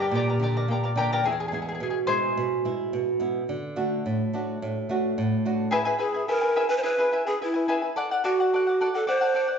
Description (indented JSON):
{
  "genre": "andean folk, Andean ensemble",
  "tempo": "107 BPM",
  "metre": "2/4",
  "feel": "straight",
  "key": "unclear",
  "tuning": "A4 = 441 Hz",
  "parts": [
    { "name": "breathy bright large pan pipes", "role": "melody", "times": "0.0-0.9, 6.0-9.6 s", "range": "E4 to C5", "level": "-24 LUFS", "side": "right 1 dB", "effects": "none" },
    { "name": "charango", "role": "accompaniment", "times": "0.0-3.2, 5.7-9.6 s", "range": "E4 to Bb5", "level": "-26 LUFS", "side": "left 2 dB", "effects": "none" },
    { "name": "flamenco guitar", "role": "accompaniment", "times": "0.0-5.7 s", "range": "E2 to F#4", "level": "-26 LUFS", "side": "right 2 dB", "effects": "none" }
  ],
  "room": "wet large studio reverb, RT60 1.3 s",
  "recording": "band playing live in one room, nothing above 7.7 kHz",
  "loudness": "-23 LUFS",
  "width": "side -7 dB against mid",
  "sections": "0.0-1.2 A section; 1.2-5.7 B section; 5.7-9.6 C section",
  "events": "charango solo 1.2-5.7",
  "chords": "0.0 Gm; 1.2 E; 3.5 D; 5.7 E; 8.0 D"
}